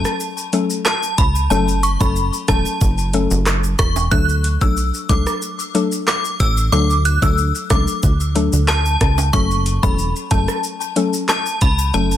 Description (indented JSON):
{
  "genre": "dancehall",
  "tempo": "92 BPM",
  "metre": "4/4",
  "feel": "straight",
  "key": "unclear",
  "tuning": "A4 = 440 Hz",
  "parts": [
    { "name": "plucky analog bass", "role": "bass", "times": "0.0-12.2 s", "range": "E1 to D2", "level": "-18 LUFS", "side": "equal", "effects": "none" },
    { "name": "island pop drum kit", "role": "drums", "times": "0.0-12.2 s", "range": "handclaps, hi-hat, kick drum, rim click, shaker", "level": "-20 LUFS", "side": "equal", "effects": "overdrive, vintage 12-bit sampler grit" },
    { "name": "egg shaker and timbales", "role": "percussion", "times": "0.1-12.2 s", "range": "none", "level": "-32 LUFS", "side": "right 11 dB", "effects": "none" },
    { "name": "mallet-like synth pluck", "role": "accompaniment", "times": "0.5-12.1 s", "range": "F#3 to A4", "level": "-22 LUFS", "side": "left 4 dB", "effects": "chorus" },
    { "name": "synth chime", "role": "melody", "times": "0.9-12.1 s", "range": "A5 to F#6", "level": "-22 LUFS", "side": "left 1 dB", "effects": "ensemble chorus, phaser, ping-pong delay" }
  ],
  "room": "digital ambience",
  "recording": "dense, heavily limited modern master",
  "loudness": "-15 LUFS",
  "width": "side -11 dB against mid",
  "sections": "0.0-12.2 A section",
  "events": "kick muted 11.9",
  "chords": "0.0 F#m; 4.1 D; 9.3 F#m"
}